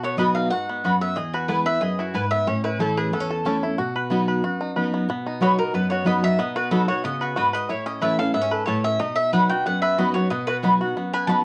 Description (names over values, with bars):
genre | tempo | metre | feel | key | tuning
bluegrass | 184 BPM | 4/4 | straight | B mixolydian | A4 = 437 Hz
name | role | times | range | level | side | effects
mandolin | melody | 0.0-11.4 s | F#4 to A5 | -27 LUFS | equal | none
picked steel-string acoustic guitar | accompaniment | 0.0-11.4 s | E2 to F#4 | -27 LUFS | equal | none
bluegrass banjo | arpeggios | 0.0-11.4 s | B3 to B4 | -30 LUFS | equal | none
mandolin | stabs | 0.2-11.4 s | A3 to B5 | -26 LUFS | equal | none
room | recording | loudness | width
moderate studio ambience, RT60 0.5 s | worn, warbling old tape, cassette tape, warbly pitch drift | -23 LUFS | mono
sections
0.0-5.1 A section; 5.1-11.4 B section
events
none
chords
0.0 B; 1.2 E; 2.5 A; 3.8 B; 7.7 A; 9.0 B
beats
0.20 0.52 0.85 | 1.17 1.50 1.83 2.15 | 2.48 2.80 3.13 3.46 | 3.78 4.11 4.43 4.76 | 5.08 5.41 5.74 6.06 | 6.39 6.71 7.04 7.37 | 7.69 8.02 8.35 8.67 | 9.00 9.33 9.65 9.98 | 10.31 10.63 10.96 11.29